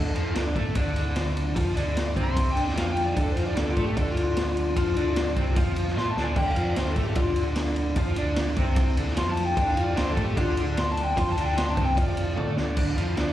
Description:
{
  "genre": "blues rock power trio and southern rock",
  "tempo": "150 BPM",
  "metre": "4/4",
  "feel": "straight",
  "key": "D minor",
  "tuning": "A4 = 440 Hz",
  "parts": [
    { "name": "overdriven slide guitar", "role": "melody", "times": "0.0-13.3 s", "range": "F4 to C6", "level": "-29 LUFS", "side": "left 2 dB", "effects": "slapback echo" },
    { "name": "crunchy overdriven guitar", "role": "riff", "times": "0.0-13.3 s", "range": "C3 to A4", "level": "-29 LUFS", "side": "equal", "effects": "tremolo, slapback echo" },
    { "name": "overdriven fingered electric bass", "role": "bass", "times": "0.0-13.3 s", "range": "C2 to A2", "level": "-28 LUFS", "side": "equal", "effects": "none" },
    { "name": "raw garage drum kit", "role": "drums", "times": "0.2-13.3 s", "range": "crash cymbal, kick drum, ride cymbal, snare drum, toms", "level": "-27 LUFS", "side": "equal", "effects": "none" }
  ],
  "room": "light reverb, studio reverb",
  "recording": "live gig heard through the venue's PA, recital hall reverb",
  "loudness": "-23 LUFS",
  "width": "side -13 dB against mid",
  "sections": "0.0-12.8 A section",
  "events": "electric slide guitar solo 0.0-12.8; drum fill 6.0-6.4, 12.4-12.8",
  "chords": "0.0 Dm",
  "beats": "0.36 0.76 1.16 | 1.56 1.96 2.36 2.76 | 3.16 3.56 3.96 4.37 | 4.76 5.17 5.57 5.97 | 6.37 6.77 7.17 7.57 | 7.97 8.37 8.77 9.17 | 9.57 9.97 10.37 10.77 | 11.18 11.58 11.98 12.38 | 12.78 13.18"
}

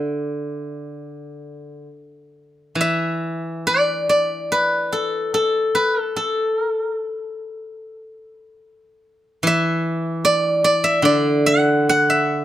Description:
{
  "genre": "chinese traditional, Chinese solo plucked strings",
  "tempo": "63-76 BPM",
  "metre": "4/4",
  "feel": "rubato",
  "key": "D gong mode",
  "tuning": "A4 = 440 Hz",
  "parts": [
    { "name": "steel-string zither", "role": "solo", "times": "0.0-12.4 s", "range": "D3 to F#5", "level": "-18 LUFS", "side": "equal", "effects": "none" }
  ],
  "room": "light reverb",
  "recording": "none",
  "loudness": "-17 LUFS",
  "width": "side -12 dB against mid",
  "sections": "0.0-2.8 A section; 2.8-12.4 B section",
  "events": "none",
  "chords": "none",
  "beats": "0.09 0.96 1.88 | 2.77 3.64 4.50 5.35 | 6.18 7.00 7.83 8.64 | 9.44 10.24 11.05 11.88"
}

